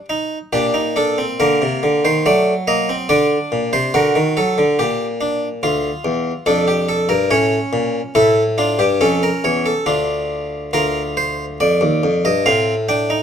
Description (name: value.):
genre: classical, baroque-style 3-part fugue for harpsichord.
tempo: 70 BPM.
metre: 3/4.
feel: straight.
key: G minor.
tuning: A4 = 440 Hz.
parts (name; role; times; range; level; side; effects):
harpsichord; solo; 0.0-13.2 s; D2 to G5; -15 LUFS; equal; none.
room: light reverb.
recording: close, detailed microphones.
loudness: -15 LUFS.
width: side -8 dB against mid.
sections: 0.5-10.7 A section; 10.7-13.2 B section.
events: none.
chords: 0.0 N.C.; 0.5 Gm/Bb; 2.3 D/F#; 3.1 D7; 4.8 Gm/Bb; 5.6 Dm; 7.3 A; 8.2 A7; 9.9 Dm; 10.7 Bb/D; 12.5 F/A.